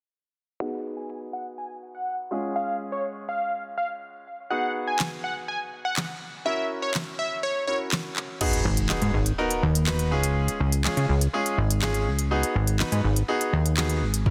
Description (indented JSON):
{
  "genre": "dance-pop",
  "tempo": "123 BPM",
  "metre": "4/4",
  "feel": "straight",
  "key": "G# minor",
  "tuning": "A4 = 439 Hz",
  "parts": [
    { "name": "plucky unison lead", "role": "melody", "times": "0.6-7.8 s", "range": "C#5 to G#5", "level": "-31 LUFS", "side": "equal", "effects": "sidechain pumping, low-pass filter" },
    { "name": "bright concert grand piano", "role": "accompaniment", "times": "0.6-14.3 s", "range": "G#3 to B4", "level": "-32 LUFS", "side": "equal", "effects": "sidechain pumping, low-pass filter" },
    { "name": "smooth R&B drum kit", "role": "drums", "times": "5.0-14.3 s", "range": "crash cymbal, handclaps, hi-hat, kick drum, snare drum", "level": "-31 LUFS", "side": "equal", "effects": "none" },
    { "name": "impact", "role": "sound effects", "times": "8.4-10.4 s", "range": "none", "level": "-34 LUFS", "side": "equal", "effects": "none" },
    { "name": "plucky analog bass", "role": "bass", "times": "8.7-14.3 s", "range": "G#1 to C#3", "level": "-25 LUFS", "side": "equal", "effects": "sidechain pumping" }
  ],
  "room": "light reverb",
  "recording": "dense, heavily limited modern master",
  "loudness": "-26 LUFS",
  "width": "mono",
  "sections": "0.6-8.4 A section; 8.4-14.3 B section",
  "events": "filter sweep 0.6-8.4; impact 8.4-10.4",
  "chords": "0.6 G#m7; 2.3 C#; 4.5 G#m7; 6.5 F#7; 8.4 G#m7; 10.1 C#; 12.3 G#m7",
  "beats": "| 0.60 1.09 1.58 2.07 | 2.56 3.04 3.53 4.02 | 4.51 5.00 5.48 5.97 | 6.46 6.95 7.43 7.92 | 8.41 8.90 9.38 9.87 | 10.36 10.85 11.34 11.82 | 12.31 12.80 13.29 13.78 | 14.26"
}